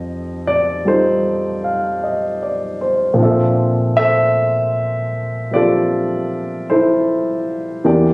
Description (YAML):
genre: jazz ballad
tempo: 52 BPM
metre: 4/4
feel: swing 66% on 8ths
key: unclear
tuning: A4 = 439 Hz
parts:
  - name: dark grand piano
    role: solo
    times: 0.0-8.1 s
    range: E2 to F5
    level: -14 LUFS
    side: equal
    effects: none
room: light reverb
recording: recorded on a phone in the room, club reverb, compression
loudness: -15 LUFS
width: side -24 dB against mid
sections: 0.0-8.1 A section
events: none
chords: 0.0 F9; 3.2 Bbmaj9#11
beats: 0.85 2.02 | 3.18 4.35 5.51 6.67 | 7.84